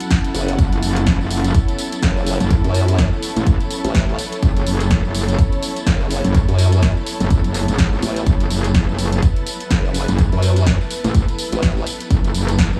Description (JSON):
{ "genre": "bass house", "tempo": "125 BPM", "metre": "4/4", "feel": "swing 58% on 16ths", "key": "F# minor", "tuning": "A4 = 440 Hz", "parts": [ { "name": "sweeping resonant pad", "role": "sustained chords", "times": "0.0-12.8 s", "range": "F#3 to B4", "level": "-32 LUFS", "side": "equal", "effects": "chorus, sidechain pumping" }, { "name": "house drum kit", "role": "drums", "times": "0.0-12.8 s", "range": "hi-hat, snare drum, tambourine", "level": "-27 LUFS", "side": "equal", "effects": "none" }, { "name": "dark studio string section", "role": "texture", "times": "0.0-12.8 s", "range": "B3 to F#5", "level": "-30 LUFS", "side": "equal", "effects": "sidechain pumping" }, { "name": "electronic kick drum", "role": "drums", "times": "0.1-12.7 s", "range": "none", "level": "-19 LUFS", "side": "equal", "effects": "none" }, { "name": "formant-sweep wobble bass", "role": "bass", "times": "0.3-11.8 s", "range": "F#1 to F#2", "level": "-20 LUFS", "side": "equal", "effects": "chorus, tube saturation, sidechain pumping" }, { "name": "metallic wobble bass", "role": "bass", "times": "0.6-12.8 s", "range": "F#1 to A1", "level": "-21 LUFS", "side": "equal", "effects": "distortion, chorus, tube saturation, sidechain pumping" } ], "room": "light reverb", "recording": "small room ambience", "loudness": "-18 LUFS", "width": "mono", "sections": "0.0-12.8 A section", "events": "none", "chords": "0.0 F#m", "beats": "0.11 | 0.59 1.07 1.55 2.03 | 2.51 2.99 3.47 3.95 | 4.43 4.91 5.39 5.87 | 6.35 6.83 7.31 7.79 | 8.27 8.75 9.23 9.71 | 10.19 10.67 11.15 11.63 | 12.11 12.59" }